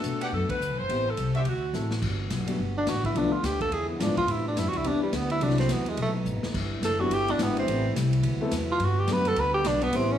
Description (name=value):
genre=jazz, big band swing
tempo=212 BPM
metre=4/4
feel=swing 60% on 8ths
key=G major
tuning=A4 = 440 Hz
part: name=clear saxophone section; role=melody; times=0.0-1.9 s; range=F#4 to C5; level=-31 LUFS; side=equal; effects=none
part: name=warm concert grand piano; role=accompaniment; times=0.0-10.1 s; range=F3 to A4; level=-32 LUFS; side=left 4 dB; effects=none
part: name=upright bass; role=bass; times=0.0-10.2 s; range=D#1 to B2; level=-29 LUFS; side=equal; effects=none
part: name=swinging big-band drum kit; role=drums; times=0.0-10.0 s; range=crash cymbal, hi-hat, kick drum, ride cymbal, snare drum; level=-35 LUFS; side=equal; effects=none
part: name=clear trumpet section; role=stabs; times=0.2-1.4 s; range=D4 to F#5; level=-36 LUFS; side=right 3 dB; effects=none
part: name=warm trombone section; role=sustained chords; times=2.0-10.2 s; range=C3 to F#4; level=-35 LUFS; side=left 1 dB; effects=none
part: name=warm tenor saxophone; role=melody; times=2.8-10.2 s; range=G3 to B4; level=-26 LUFS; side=right 1 dB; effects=none
room=moderate recital hall reverb, RT60 1.5 s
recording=studio reverb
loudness=-24 LUFS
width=side -10 dB against mid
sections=0.0-2.0 A section; 2.0-10.2 B section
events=band accent 0.5; drum fill 1.7, 6.3; tenor saxophone solo 2.0-10.2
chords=0.0 Gmaj7; 0.9 Am7; 1.5 D9; 2.0 Gmaj7; 3.2 Bm7b5; 3.7 E7b9; 4.3 Am11; 5.4 F#m7b5; 6.0 B7b9; 6.5 Em7; 7.7 Am7; 8.2 D13; 8.8 Gmaj7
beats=0.04 0.32 0.60 | 0.89 1.17 1.45 1.74 | 2.02 2.30 2.58 2.87 | 3.15 3.43 3.72 4.00 | 4.28 4.57 4.85 5.13 | 5.41 5.70 5.98 6.26 | 6.54 6.83 7.11 7.39 | 7.67 7.95 8.23 8.52 | 8.80 9.08 9.36 9.64 | 9.93